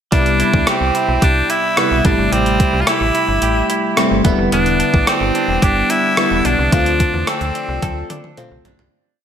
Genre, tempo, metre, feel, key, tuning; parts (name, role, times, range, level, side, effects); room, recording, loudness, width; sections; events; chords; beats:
1980s-style pop; 109 BPM; 4/4; straight; C major; A4 = 440 Hz
raspy tenor saxophone; melody; 0.1-8.1 s; C4 to F4; -18 LUFS; equal; ping-pong delay
FM electric piano; accompaniment; 0.1-8.9 s; C3 to F4; -20 LUFS; left 2 dB; chorus, phaser
direct-recorded clean electric guitar; riff; 0.1-9.2 s; F3 to A4; -22 LUFS; right 5 dB; lush chorus, ping-pong delay
slap-like FM bass; bass; 0.1-8.9 s; E1 to E2; -20 LUFS; equal
gated 80s digital drum machine; drums; 0.1-8.9 s; hi-hat, kick drum, rim click, toms; -18 LUFS; equal; gated reverb, overdrive
light reverb; -13 LUFS; side -8 dB against mid
0.1-8.9 verse
fade-out 6.7-8.9; drum fill 7.8-8.9
0.1 Cmaj7; 2.0 Am7; 4.2 Em7; 6.7 Dm7
| 0.12 0.67 1.22 1.77 | 2.32 2.87 3.42 3.97 | 4.52 5.07 5.62 6.17 | 6.73 7.28 7.83 8.38